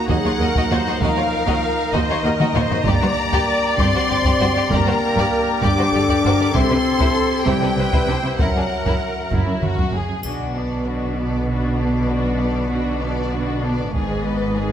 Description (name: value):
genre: cinematic, epic orchestral film score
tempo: 65 BPM (dotted quarters)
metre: 6/8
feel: straight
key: B dorian from 10.2 s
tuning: A4 = 439 Hz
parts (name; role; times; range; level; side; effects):
- warm symphonic violin section; melody; 0.0-14.7 s; B4 to D6; -25 LUFS; left 3 dB; none
- rich symphonic viola section; accompaniment; 0.0-14.7 s; G#3 to D5; -25 LUFS; equal; none
- clear woodwind section; sustained chords; 0.0-9.9 s; A#3 to A#5; -27 LUFS; equal; none
- mellow French horn section; sustained chords; 0.0-14.7 s; D3 to D4; -25 LUFS; left 3 dB; none
- rich symphonic violin section; second line; 0.1-14.7 s; D4 to D#5; -27 LUFS; left 3 dB; none
- rich symphonic cello section; bass; 0.1-14.7 s; D#2 to C3; -25 LUFS; right 2 dB; none
- rich symphonic double bass section; bass; 0.1-14.7 s; F#1 to D#2; -24 LUFS; right 2 dB; none
- taiko ensemble; drums; 0.1-14.7 s; none; -24 LUFS; equal; none
- triangle and cymbal swell; percussion; 10.2-14.7 s; none; -40 LUFS; left 2 dB; none
room: wet scoring stage reverb, RT60 1.7 s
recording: none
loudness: -17 LUFS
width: side -9 dB against mid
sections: 0.0-10.2 A section; 10.2-14.7 B section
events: drum fill 2.4-2.9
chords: 0.0 D#m; 2.9 Gm; 6.6 C; 8.4 F#7; 10.2 Bm; 13.9 G#m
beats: 0.09 | 1.02 1.94 | 2.86 3.79 | 4.71 5.63 | 6.55 7.48 | 8.40 9.32 | 10.25 11.17 | 12.09 13.02 | 13.94